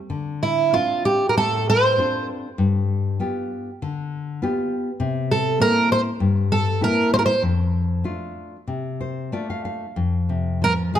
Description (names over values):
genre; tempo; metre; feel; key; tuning
fado-style ballad; 97 BPM; 4/4; uneven beats, rubato; F major; A4 = 441 Hz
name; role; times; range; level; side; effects
nylon-string guitar; accompaniment; 0.1-11.0 s; F2 to F5; -23 LUFS; left 2 dB; none
fingerpicked twelve-string acoustic guitar; melody; 0.4-11.0 s; E4 to C5; -19 LUFS; right 2 dB; none
room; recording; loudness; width
moderate recital hall reverb, RT60 1.7 s; close, detailed microphones; -19 LUFS; side -10 dB against mid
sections
0.0-10.0 A section; 10.0-11.0 B section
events
nylon-string guitar fill 8.7-10.0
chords
0.1 Dm7; 2.6 G7; 5.0 C7; 7.4 F6; 10.0 F5